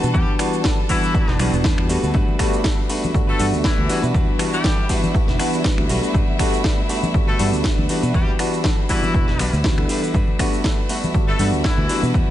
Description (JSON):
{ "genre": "filtered disco house", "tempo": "120 BPM", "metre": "4/4", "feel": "swing 54% on 16ths", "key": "G major", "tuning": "A4 = 441 Hz", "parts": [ { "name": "tine electric piano", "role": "accompaniment", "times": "0.0-12.3 s", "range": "E3 to A4", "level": "-24 LUFS", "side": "equal", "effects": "overdrive, phaser, sidechain pumping" }, { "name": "clear studio string section", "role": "sustained chords", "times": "0.0-12.3 s", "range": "E4 to A5", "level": "-31 LUFS", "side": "equal", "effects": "sidechain pumping" }, { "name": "direct-recorded clean electric guitar", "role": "riff", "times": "0.0-12.3 s", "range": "G3 to B4", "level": "-28 LUFS", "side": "left 2 dB", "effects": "sidechain pumping" }, { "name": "fingered electric bass", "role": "bass", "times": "0.0-12.2 s", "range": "E1 to B2", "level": "-22 LUFS", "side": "equal", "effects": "tube saturation, sidechain pumping" }, { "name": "house drum kit", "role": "drums", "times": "0.0-12.3 s", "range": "finger snaps, hi-hat, shaker, snare drum", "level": "-27 LUFS", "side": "equal", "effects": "overdrive, sidechain pumping on perc, sidechain pumping on hats" }, { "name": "brilliant horn section", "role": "melody", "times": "0.1-12.0 s", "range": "E3 to A4", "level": "-28 LUFS", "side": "left 2 dB", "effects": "sidechain pumping, tape echo" }, { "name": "electronic kick drum", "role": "drums", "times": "0.1-12.3 s", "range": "none", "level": "-20 LUFS", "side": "equal", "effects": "none" }, { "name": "tambourine and congas", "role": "percussion", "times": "2.1-12.3 s", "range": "none", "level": "-31 LUFS", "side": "left 2 dB", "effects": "none" } ], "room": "digital ambience", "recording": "nothing above 10.4 kHz", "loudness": "-16 LUFS", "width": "side -12 dB against mid", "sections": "0.0-12.3 A section", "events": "none", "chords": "0.1 Em9; 2.1 Gmaj9; 4.1 Em9; 6.1 Gmaj9; 8.1 Em9; 10.1 Gmaj9", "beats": "| 0.14 0.65 1.15 1.65 | 2.15 2.65 3.15 3.65 | 4.14 4.64 5.14 5.64 | 6.14 6.64 7.14 7.64 | 8.14 8.64 9.14 9.64 | 10.14 10.64 11.14 11.64 | 12.14" }